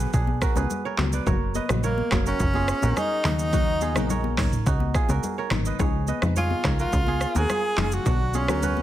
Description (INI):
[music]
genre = afrobeats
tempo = 106 BPM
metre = 4/4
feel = straight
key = F# major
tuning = A4 = 441 Hz
[part]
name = hollow square pluck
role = accompaniment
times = 0.0-8.7 s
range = C#3 to F#4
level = -30 LUFS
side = left 4 dB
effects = chorus
[part]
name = kora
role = riff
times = 0.0-8.8 s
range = C#4 to D#5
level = -30 LUFS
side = right 7 dB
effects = ping-pong delay
[part]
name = plucky analog bass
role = bass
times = 0.0-8.8 s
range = F#1 to E#2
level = -25 LUFS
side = equal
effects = none
[part]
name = afro-pop drum kit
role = drums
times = 0.0-8.8 s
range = handclaps, hi-hat, kick drum, rim click, shaker, toms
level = -26 LUFS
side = equal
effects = soft clipping on snare
[part]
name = congas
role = percussion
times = 0.3-8.8 s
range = none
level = -33 LUFS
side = left 6 dB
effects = none
[part]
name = breathy tenor saxophone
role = melody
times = 1.8-8.8 s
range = A#3 to G#4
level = -27 LUFS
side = equal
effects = ping-pong delay
[sound]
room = little or no reverb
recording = dense, heavily limited modern master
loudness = -21 LUFS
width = side -13 dB against mid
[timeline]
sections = 0.0-8.8 A section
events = none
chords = 0.0 Bm; 1.3 F#; 3.2 D#m7; 5.8 C#add9; 8.1 Bm